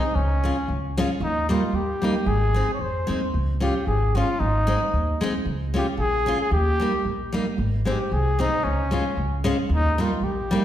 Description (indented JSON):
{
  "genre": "alpine folk, alpine dance band",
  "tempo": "113 BPM",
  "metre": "2/4",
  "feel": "swing 55% on 8ths",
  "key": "Ab major",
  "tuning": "A4 = 439 Hz",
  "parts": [
    { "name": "dark trumpet", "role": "melody", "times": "0.0-10.6 s", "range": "Db4 to Db5", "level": "-26 LUFS", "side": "left 1 dB", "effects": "none" },
    { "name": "picked steel-string acoustic guitar", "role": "accompaniment", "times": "0.0-10.6 s", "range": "G3 to F4", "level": "-26 LUFS", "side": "equal", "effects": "none" },
    { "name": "upright bass", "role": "bass", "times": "0.2-10.6 s", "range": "Ab1 to F2", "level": "-24 LUFS", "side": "equal", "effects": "none" }
  ],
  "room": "wet recital hall reverb, RT60 1.4 s",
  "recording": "heard from further back in the room",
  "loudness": "-21 LUFS",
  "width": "side -11 dB against mid",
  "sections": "0.0-10.6 A section",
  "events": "none",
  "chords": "0.2 Db; 1.2 Eb; 2.3 Ab; 3.3 Db; 4.4 Ab; 5.5 Db; 6.5 Eb; 7.6 Ab; 8.6 Db; 9.7 Eb"
}